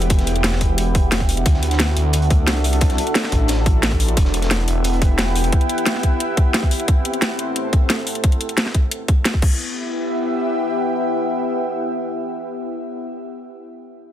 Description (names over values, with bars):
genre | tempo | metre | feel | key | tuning
dark technical drum and bass | 177 BPM | 4/4 | straight | E minor | A4 = 445 Hz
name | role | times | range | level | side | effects
deep dark ambient pad | sustained chords | 0.0-13.1 s | A3 to G5 | -27 LUFS | right 1 dB | chorus, built-in reverb, sidechain pumping
phased detuned saw bass | bass | 0.0-5.5 s | E1 to D2 | -19 LUFS | equal | phaser, tube saturation
crunchy breakbeat drum kit | drums | 0.0-5.5 s | hi-hat, snare drum | -31 LUFS | right 1 dB | high-pass filter on hats, studio reverb, high-pass filter on snare, high-pass filter on room
drum and bass drum kit | drums | 0.0-9.5 s | crash cymbal, hi-hat, snare drum | -21 LUFS | equal | overdrive, studio reverb
airy breathy pad | texture | 0.0-13.1 s | B3 to E5 | -25 LUFS | left 1 dB | chorus, sidechain pumping
electronic kick drum | drums | 0.1-9.5 s | none | -16 LUFS | equal | overdrive, studio reverb
room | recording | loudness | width
light reverb | dense, heavily limited modern master | -16 LUFS | side -11 dB against mid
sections
0.0-9.6 A section; 9.6-12.3 B section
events
drop 0.0-9.6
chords
0.0 Em; 1.5 D; 4.2 Em; 6.9 Am; 9.4 Em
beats
| 0.10 0.44 0.78 1.12 | 1.46 1.80 2.14 2.48 | 2.81 3.15 3.49 3.83 | 4.17 4.51 4.85 5.19 | 5.53 5.86 6.20 6.54 | 6.88 7.22 7.56 7.90 | 8.24 8.58 8.91 9.25 | 9.59 9.93 10.27 10.61 | 10.95 11.29 11.63 11.97